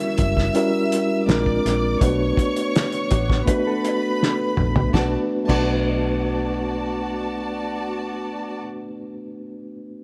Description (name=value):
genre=lush 1970s-style soul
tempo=82 BPM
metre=4/4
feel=straight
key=B minor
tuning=A4 = 444 Hz
part: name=clear studio violin section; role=second line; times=0.0-8.6 s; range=F#4 to E6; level=-30 LUFS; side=equal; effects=none
part: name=mellow tine electric piano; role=accompaniment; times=0.0-10.0 s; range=G3 to B4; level=-26 LUFS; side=equal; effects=none
part: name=vintage muted fingered electric bass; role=bass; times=0.2-8.6 s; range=F#1 to B1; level=-28 LUFS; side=equal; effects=none
part: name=cloth-damped thuddy drum kit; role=drums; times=0.2-5.7 s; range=crash cymbal, hi-hat, kick drum, snare drum, toms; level=-25 LUFS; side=equal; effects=none
part: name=mellow electric guitar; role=riff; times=3.1-4.7 s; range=D4 to B4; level=-35 LUFS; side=equal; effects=none
room=light reverb, studio ambience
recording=none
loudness=-22 LUFS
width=mono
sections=0.0-4.9 A section; 4.9-7.9 B section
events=drum fill 4.2-4.9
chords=0.0 F#7b9; 1.3 A#9; 2.0 Bm7